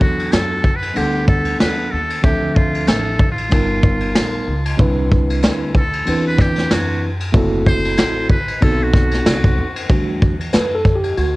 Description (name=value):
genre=hip hop, jazz-hop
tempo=94 BPM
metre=4/4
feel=swing 58% on 16ths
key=E minor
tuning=A4 = 439 Hz
part: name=trumpet with metal mute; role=melody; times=0.0-9.8 s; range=F4 to C5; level=-23 LUFS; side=equal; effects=cassette tape, tape echo
part: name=mellow tine electric piano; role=accompaniment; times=0.0-11.4 s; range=E3 to F#5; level=-20 LUFS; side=right 1 dB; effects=medium stereo tremolo
part: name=upright bass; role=bass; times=0.0-11.4 s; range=F#1 to F#2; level=-23 LUFS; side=equal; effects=none
part: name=vintage brush drum kit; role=drums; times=0.0-11.3 s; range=hi-hat, kick drum, ride cymbal, snare drum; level=-16 LUFS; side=equal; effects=cassette tape
room=light reverb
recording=home recording on cassette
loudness=-14 LUFS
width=side -20 dB against mid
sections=0.0-9.9 A section; 9.9-11.4 A section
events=muted trumpet solo 0.0-9.9; tine electric piano solo 9.9-11.4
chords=0.0 Em11; 2.2 Dm7; 3.5 G7alt; 4.8 Cmaj9; 7.3 F#m7b5; 8.6 B7b9; 9.9 Em11